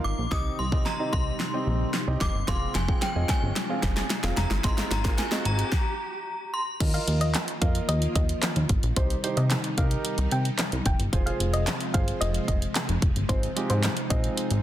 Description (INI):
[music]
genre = dance-pop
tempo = 111 BPM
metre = 4/4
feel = straight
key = Eb major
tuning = A4 = 440 Hz
[part]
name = synth chime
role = melody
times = 0.0-6.8 s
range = G5 to Eb6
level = -32 LUFS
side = equal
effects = ensemble chorus, tremolo
[part]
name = warm concert grand piano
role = accompaniment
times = 0.0-14.6 s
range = Ab3 to G5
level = -34 LUFS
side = right 3 dB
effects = sidechain pumping
[part]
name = string machine, violas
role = sustained chords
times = 0.0-14.6 s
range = C3 to F4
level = -34 LUFS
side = left 1 dB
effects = ensemble chorus, sidechain pumping
[part]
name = plucky analog bass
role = bass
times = 0.0-14.6 s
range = F1 to C3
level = -26 LUFS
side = equal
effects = sidechain pumping
[part]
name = riser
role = sound effects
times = 2.3-5.7 s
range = none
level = -39 LUFS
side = left 1 dB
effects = none
[part]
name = pop drum kit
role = drums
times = 0.3-14.6 s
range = crash cymbal, handclaps, hi-hat, kick drum, snare drum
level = -27 LUFS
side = equal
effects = none
[part]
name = soft round pluck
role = melody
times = 6.9-14.2 s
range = C5 to G5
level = -34 LUFS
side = left 1 dB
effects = chorus, dub echo
[sound]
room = little or no reverb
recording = dense, heavily limited modern master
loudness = -23 LUFS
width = side -12 dB against mid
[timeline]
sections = 0.0-6.8 A section; 6.8-14.6 B section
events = build-up 0.0-6.8; drum fill 0.0-5.7; riser 2.3-6.8; stop 5.7-6.8; drop 6.8-14.6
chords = 0.3 Cm; 2.5 Fm; 4.6 Ab6; 6.8 Ebsus2; 9.0 Cm; 11.1 Fm; 13.3 Ab6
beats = | 0.32 0.86 1.40 1.94 | 2.48 3.02 3.56 4.10 | 4.64 5.18 5.72 6.26 | 6.80 7.34 7.89 8.43 | 8.97 9.51 10.05 10.59 | 11.13 11.67 12.21 12.75 | 13.29 13.83 14.37